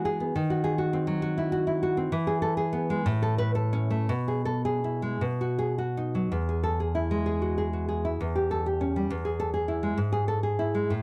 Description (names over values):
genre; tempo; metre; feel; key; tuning
romantic piece for solo classical guitar; 52-70 BPM (dotted quarters); 6/8; rubato; E major; A4 = 439 Hz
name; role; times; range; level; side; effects
nylon-string guitar; solo; 0.0-11.0 s; E2 to B4; -28 LUFS; equal; none
room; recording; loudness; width
little or no reverb; close, detailed microphones; -28 LUFS; mono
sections
0.0-6.3 A section; 6.3-11.0 B section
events
none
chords
0.3 G#7b13/D# (rootless); 2.1 E; 3.0 A; 4.1 E/B; 5.2 B; 6.3 E; 8.2 Em6; 9.1 E; 10.0 E/G#